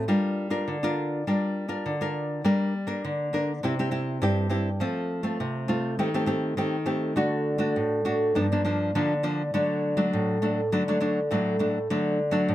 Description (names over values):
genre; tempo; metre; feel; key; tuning
samba; 102 BPM; 4/4; straight; G harmonic minor; A4 = 441 Hz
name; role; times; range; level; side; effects
nylon-string guitar; solo; 0.0-12.5 s; G2 to Bb4; -24 LUFS; equal; none
room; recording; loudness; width
light reverb; close, detailed microphones; -24 LUFS; side -13 dB against mid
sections
0.0-2.5 A section; 2.5-12.5 B section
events
none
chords
0.1 Gm7; 2.5 Gm; 3.6 C; 4.8 F; 6.0 Am7b5/Eb; 7.2 D; 8.4 Gm7; 9.5 D